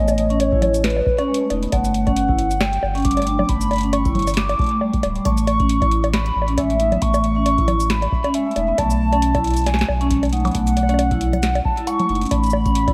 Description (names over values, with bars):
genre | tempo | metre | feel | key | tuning
IDM | 136 BPM | 4/4 | swing 56% on 16ths | unclear | A4 = 440 Hz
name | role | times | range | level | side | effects
warbly nostalgic lead | melody | 0.0-12.9 s | B4 to D6 | -24 LUFS | equal | chorus, diffuse ambient delay
vibraphone with medium mallets | arpeggios | 0.0-12.9 s | G3 to E4 | -25 LUFS | equal | tape echo
warm sub bass | bass | 0.0-12.9 s | D1 to B1 | -24 LUFS | equal | none
booming analog drum machine | drums | 0.1-12.9 s | bongos, cabasa, congas, hi-hat, snare drum | -27 LUFS | equal | tape echo
electronic kick drum | drums | 0.5-12.9 s | none | -25 LUFS | equal | none
room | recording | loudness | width
moderate lush hall reverb, RT60 2.0 s | dreamy mix soaked in reverb | -19 LUFS | mono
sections
0.0-12.9 A section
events
none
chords
0.0 Aadd9; 1.7 Gmaj7(no3); 5.3 Aadd9; 8.8 B7(no3); 12.3 Asus2